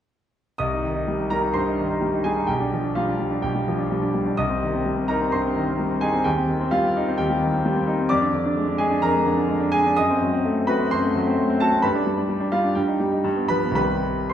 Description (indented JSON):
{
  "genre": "classical, virtuoso piano study",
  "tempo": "128 BPM",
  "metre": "4/4",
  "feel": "rubato",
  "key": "C minor",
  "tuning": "A4 = 440 Hz",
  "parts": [
    { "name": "clear concert grand piano", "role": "solo", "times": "0.6-14.3 s", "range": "B1 to Eb6", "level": "-20 LUFS", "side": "equal", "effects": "none" }
  ],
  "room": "wet recital hall reverb, RT60 1.8 s",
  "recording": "heard from further back in the room",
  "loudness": "-20 LUFS",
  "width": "side -10 dB against mid",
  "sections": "0.6-14.3 A section",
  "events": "none",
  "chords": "0.6 Cm; 2.5 G7/B; 4.4 Cm; 6.3 Cm/Eb; 8.1 Ddim/F; 10.0 F#dim7; 11.8 G; 12.8 Eb/G; 13.2 G7; 13.8 Cm"
}